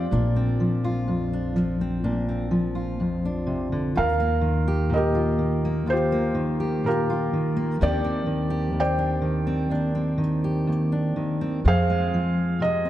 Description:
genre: acoustic folk-pop ballad.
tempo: 62 BPM.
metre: 4/4.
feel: straight.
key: Eb major.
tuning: A4 = 440 Hz.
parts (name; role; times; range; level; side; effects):
felt-muted upright piano; melody; 0.0-12.9 s; F4 to G5; -26 LUFS; equal; none.
fingerpicked steel-string acoustic guitar; accompaniment; 0.0-12.9 s; Eb2 to G4; -24 LUFS; equal; none.
upright bass; bass; 0.0-12.9 s; Bb1 to F2; -27 LUFS; equal; none.
room: moderate concert hall reverb, RT60 1.8 s.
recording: none.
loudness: -22 LUFS.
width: side -13 dB against mid.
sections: 0.0-12.9 A section.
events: none.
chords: 0.1 Bbadd9; 4.0 Ebadd9; 7.8 Cmadd9/Eb; 11.6 Fm.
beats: | 0.12 1.07 2.04 3.00 | 3.97 4.93 5.89 6.85 | 7.81 8.77 9.73 10.69 | 11.65 12.61.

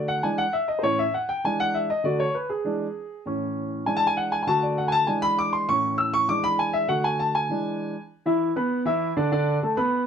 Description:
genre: latin.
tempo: 198 BPM.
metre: 4/4.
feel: straight.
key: unclear.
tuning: A4 = 440 Hz.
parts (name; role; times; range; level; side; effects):
warm grand piano; solo; 0.0-10.0 s; A2 to E6; -22 LUFS; equal; none.
room: light reverb.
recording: dark, warm production.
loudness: -22 LUFS.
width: side -7 dB against mid.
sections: 0.0-8.1 A section; 8.1-10.1 B section.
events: grand piano solo 0.0-8.1.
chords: 0.2 E7; 0.8 A; 1.4 E7; 2.0 D; 2.6 E7; 3.3 A; 3.9 E7; 4.5 D; 5.1 E7; 5.7 A; 6.3 E7; 6.9 D; 7.5 E7; 8.1 E5; 9.3 D5.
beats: 0.23 0.53 | 0.83 1.14 1.44 1.74 | 2.04 2.35 2.65 2.95 | 3.25 3.56 3.86 4.16 | 4.47 4.77 5.07 5.38 | 5.68 5.98 6.28 6.59 | 6.89 7.19 7.50 7.80 | 8.10 8.41 8.71 9.01 | 9.31 9.62 9.92.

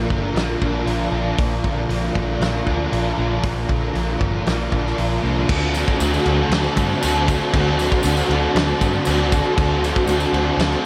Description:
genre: rock, shoegaze and dream pop.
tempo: 117 BPM.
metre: 4/4.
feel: straight.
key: unclear.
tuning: A4 = 439 Hz.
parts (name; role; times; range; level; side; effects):
dark analog pad; sustained chords; 0.0-10.9 s; F4 to Bb5; -29 LUFS; equal; lush chorus.
overdriven semi-hollow guitar; riff; 0.0-10.9 s; Bb2 to A4; -26 LUFS; equal; reverse reverb.
thick fuzz guitar; riff; 0.0-10.9 s; Bb2 to F4; -27 LUFS; equal; distortion, ensemble chorus.
vintage muted picked electric bass; bass; 0.0-10.7 s; G1 to G2; -26 LUFS; equal; none.
loose indie drum kit; drums; 0.1-10.7 s; crash cymbal, hi-hat, kick drum, snare drum; -25 LUFS; equal; none.
tambourine; percussion; 5.5-10.8 s; none; -39 LUFS; equal; none.
room: wet huge ambient reverb, RT60 8.2 s.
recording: dreamy mix soaked in reverb.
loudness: -20 LUFS.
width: mono.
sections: 0.0-5.5 A section; 5.5-10.9 B section.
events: none.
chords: 0.0 Bb; 5.5 D7.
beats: 0.36 0.87 | 1.38 1.89 2.41 2.92 | 3.43 3.94 4.46 4.97 | 5.48 5.99 6.50 7.02 | 7.53 8.04 8.55 9.06 | 9.57 10.08 10.59.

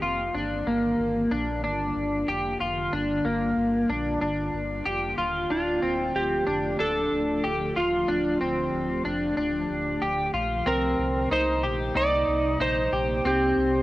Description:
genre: dream pop.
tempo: 93 BPM.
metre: 4/4.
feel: straight.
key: G minor.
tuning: A4 = 441 Hz.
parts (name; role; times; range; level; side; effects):
ethereal airy pad; sustained chords; 0.0-13.8 s; C3 to G4; -34 LUFS; right 1 dB; ensemble chorus, built-in reverb, cassette tape, shimmer reverb.
clean electric guitar; arpeggios; 0.0-13.8 s; Bb3 to G4; -26 LUFS; left 1 dB; analog chorus, cassette tape, shimmer reverb, analog delay.
sub bass with octave; bass; 0.0-13.8 s; D1 to C2; -34 LUFS; equal; none.
clean lap steel guitar; melody; 5.5-13.8 s; F4 to D5; -26 LUFS; right 1 dB; cassette tape, shimmer reverb, analog delay.
room: wet booth ambience, RT60 0.2 s.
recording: home recording on cassette.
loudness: -23 LUFS.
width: side -16 dB against mid.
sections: 0.0-10.7 A section; 10.7-13.8 B section.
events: none.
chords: 0.3 Gm7; 5.5 Dm; 10.7 Cm7.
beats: | 0.34 0.99 1.63 2.28 | 2.92 3.57 4.21 4.86 | 5.50 6.15 6.79 7.44 | 8.08 8.73 9.37 10.02 | 10.66 11.31 11.95 12.60 | 13.24.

